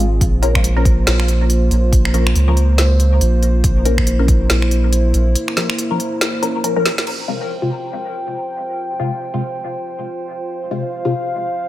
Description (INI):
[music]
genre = deep dubstep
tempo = 140 BPM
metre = 4/4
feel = swing 59% on 16ths, half-time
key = F harmonic minor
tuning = A4 = 440 Hz
[part]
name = dark analog pad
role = sustained chords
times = 0.0-11.7 s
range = Bb3 to G5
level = -22 LUFS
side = equal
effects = chorus
[part]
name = filtered dub chord stab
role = stabs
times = 0.0-11.1 s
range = C3 to Bb4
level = -23 LUFS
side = left 3 dB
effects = phaser, wide subtle chorus, dub echo
[part]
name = soft dub sub bass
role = bass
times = 0.0-5.4 s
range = Ab1 to Db2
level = -14 LUFS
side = equal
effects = none
[part]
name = deep house drum kit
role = drums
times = 0.0-7.2 s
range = crash cymbal, finger snaps, hi-hat, snare drum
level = -21 LUFS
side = equal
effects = none
[part]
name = electronic kick drum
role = drums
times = 0.2-4.4 s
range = none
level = -16 LUFS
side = equal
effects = none
[sound]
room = light reverb, digital ambience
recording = none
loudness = -14 LUFS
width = side -14 dB against mid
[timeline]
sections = 0.0-7.1 A section; 7.1-11.7 B section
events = break 5.4-7.1; drum fill 6.9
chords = 0.2 Bbm; 7.1 Fm